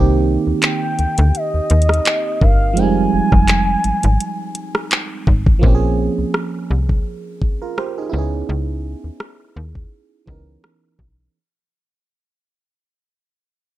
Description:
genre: contemporary R&B.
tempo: 84 BPM.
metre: 4/4.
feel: swing 54% on 16ths.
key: Bb dorian.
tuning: A4 = 440 Hz.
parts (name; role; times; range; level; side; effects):
FM electric piano; accompaniment; 0.0-11.4 s; Eb3 to C5; -21 LUFS; right 5 dB; chorus.
slap-like FM bass; bass; 0.0-11.3 s; F1 to Eb2; -17 LUFS; equal; none.
celesta; texture; 0.0-3.1 s; Gb4 to Bb4; -33 LUFS; right 1 dB; none.
smooth R&B drum kit; drums; 0.6-11.2 s; handclaps, hi-hat, kick drum, rim click; -16 LUFS; equal; none.
gliding portamento lead; melody; 0.7-5.3 s; Eb5 to Ab5; -21 LUFS; equal; chorus, tape echo.
room: digital ambience.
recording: dark, warm production.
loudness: -15 LUFS.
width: side -15 dB against mid.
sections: 0.0-5.6 A section; 5.6-11.3 B section.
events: fade-out 5.6-11.3.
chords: 0.0 Cm7; 2.8 Fm9; 5.6 Bbm9; 8.1 Dbm9.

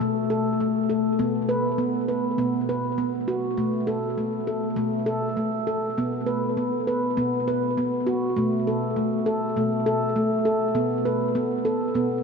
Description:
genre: world meditative, meditative tuned percussion.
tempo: 100 BPM.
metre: 4/4.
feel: straight.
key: unclear.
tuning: A4 = 440 Hz.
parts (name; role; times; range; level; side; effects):
handpan; solo; 0.0-12.2 s; B2 to B4; -22 LUFS; equal; ping-pong delay.
room: wet huge ambient reverb, RT60 8.3 s.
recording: dreamy mix soaked in reverb.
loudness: -22 LUFS.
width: side -5 dB against mid.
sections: 0.0-7.2 A section; 7.2-12.2 B section.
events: none.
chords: 0.0 Asus2/B; 1.2 N.C.; 2.4 B5; 3.6 Asus2/B; 6.0 N.C.; 7.2 B5; 8.4 Asus2/B.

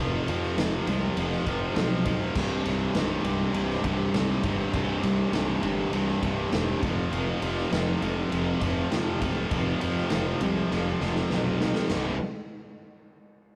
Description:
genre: quiet-loud alternative rock.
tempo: 100 BPM.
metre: 4/4.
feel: straight.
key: unclear.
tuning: A4 = 440 Hz.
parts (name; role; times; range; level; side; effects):
fuzz guitar; riff; 0.0-12.2 s; C2 to F3; -38 LUFS; equal; none.
overdriven electric guitar; riff; 0.0-12.1 s; C2 to E4; -32 LUFS; equal; none.
scooped high-gain guitar; riff; 0.0-12.2 s; C2 to E4; -35 LUFS; equal; distortion.
fuzz fingered electric bass; bass; 0.0-12.2 s; C1 to F2; -33 LUFS; equal; overdrive.
raw garage drum kit; drums; 0.3-12.0 s; crash cymbal, kick drum, ride cymbal, snare drum, splash cymbal; -33 LUFS; equal; none.
room: moderate small room reverb, RT60 0.5 s.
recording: rough rehearsal-room recording, warm saturation.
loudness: -27 LUFS.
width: mono.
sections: 0.0-11.9 A section; 11.9-13.6 B section.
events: drum fill 10.7-11.9.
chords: 0.0 F5; 2.4 C5; 6.8 F5; 11.9 C.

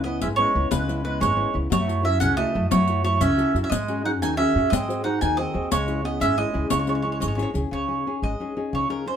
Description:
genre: italian folk, Italian serenade.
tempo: 120 BPM (dotted quarters).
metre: 6/8.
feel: straight.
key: C# minor.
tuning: A4 = 440 Hz.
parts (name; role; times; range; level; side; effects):
mandolin; melody; 0.0-9.2 s; Bb4 to G#5; -25 LUFS; right 3 dB; none.
mellow clarinet; second line; 0.0-7.5 s; G#3 to D#4; -27 LUFS; right 3 dB; none.
nylon-string guitar; accompaniment; 0.0-9.2 s; C#3 to B#4; -27 LUFS; left 4 dB; none.
upright bass; bass; 0.0-8.8 s; G#1 to G#2; -27 LUFS; equal; none.
riq; percussion; 0.2-7.6 s; none; -29 LUFS; left 6 dB; none.
room: moderate studio reverb, RT60 0.6 s.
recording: minimal, uncompressed stereo recording.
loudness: -21 LUFS.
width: side -8 dB against mid.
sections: 0.0-7.7 A section; 7.7-9.2 B section.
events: none.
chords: 0.0 C#m7; 1.7 F#m7; 3.7 G#7sus4; 4.7 G#7; 5.7 C#m; 7.7 Dbsus2.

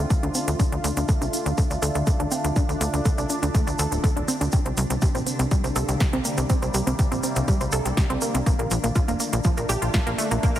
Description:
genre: melodic techno.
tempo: 122 BPM.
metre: 4/4.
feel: straight.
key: D minor.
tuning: A4 = 440 Hz.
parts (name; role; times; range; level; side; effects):
sweeping resonant pad; sustained chords; 0.0-10.6 s; C3 to F4; -31 LUFS; equal; chorus, phaser, sidechain pumping.
wide unison pluck; arpeggios; 0.0-10.6 s; F3 to D5; -28 LUFS; right 1 dB; sidechain pumping, tape echo.
tight sequencer bass; bass; 0.0-10.6 s; D1 to D2; -26 LUFS; equal; sidechain pumping.
swarming drone; drone; 0.0-10.6 s; D3 to D4; -35 LUFS; left 1 dB; built-in reverb, sidechain pumping.
electronic kick drum; drums; 0.1-10.5 s; none; -22 LUFS; equal; overdrive.
techno drum kit; drums; 0.1-10.6 s; hi-hat, snare drum; -31 LUFS; left 1 dB; none.
egg shaker; percussion; 0.1-10.6 s; none; -34 LUFS; right 2 dB; none.
room: light reverb.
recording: heavily compressed radio sound, multiband compression.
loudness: -21 LUFS.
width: side -12 dB against mid.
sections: 0.0-10.6 A section.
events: filter sweep on synth pluck 0.0-10.6.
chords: 0.0 Dm7; 4.5 C5; 8.5 Bbmaj7.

